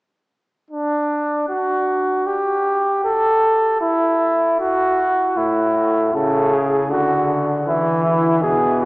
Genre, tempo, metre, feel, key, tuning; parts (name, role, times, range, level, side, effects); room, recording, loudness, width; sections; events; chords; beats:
classical, imitative canzona for brass ensemble; 78 BPM; 3/4; straight; A4 = 442 Hz
mellow flugelhorn; second line; 0.7-8.9 s; D4 to A4; -17 LUFS; equal
clear trombone; accompaniment; 5.4-8.9 s; A2 to E3; -19 LUFS; equal
wet cathedral reverb, RT60 5.0 s; heard from further back in the room, small speaker sound; -16 LUFS; side -23 dB against mid
0.7-8.9 A section
0.7 N.C.; 5.4 A; 6.9 D; 7.7 E
| 0.71 1.49 2.27 | 3.04 3.81 4.59 | 5.37 6.14 6.91 | 7.67 8.43